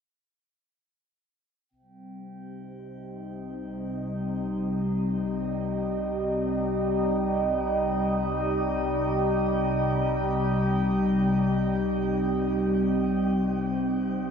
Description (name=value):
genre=ambient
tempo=free time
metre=none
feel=none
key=C minor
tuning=A4 = 436 Hz
part: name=evolving wavetable pad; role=sustained chords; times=2.1-14.3 s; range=C3 to Eb4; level=-25 LUFS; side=equal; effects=phaser, built-in reverb
part: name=round analog bass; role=bass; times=1.7-14.3 s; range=C2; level=-40 LUFS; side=equal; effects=none
part: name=glass harmonica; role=texture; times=1.7-14.3 s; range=G5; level=-43 LUFS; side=right 3 dB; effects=none
room=wet shimmer reverb, RT60 7.5 s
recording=none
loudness=-24 LUFS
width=side -6 dB against mid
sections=1.7-14.3 A section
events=fade-in on analog synth bass 1.7-14.3; fade-in on glass harmonica 1.7-14.3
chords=1.7 Cm